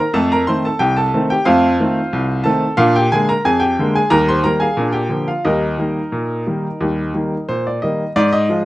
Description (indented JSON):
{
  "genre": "ragtime piano",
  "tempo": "90 BPM",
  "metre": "2/4",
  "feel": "straight",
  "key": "Eb major",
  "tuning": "A4 = 440 Hz",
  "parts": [
    { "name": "bright baby grand piano", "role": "solo", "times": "0.0-8.7 s", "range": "C2 to C6", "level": "-14 LUFS", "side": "equal", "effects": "none" }
  ],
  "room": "light reverb",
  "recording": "dark, warm production",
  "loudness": "-14 LUFS",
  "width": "side -17 dB against mid",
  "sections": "0.0-8.2 A section",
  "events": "none",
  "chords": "0.1 F7; 2.8 Bb7; 4.1 Eb; 4.8 Bb7; 5.5 Eb"
}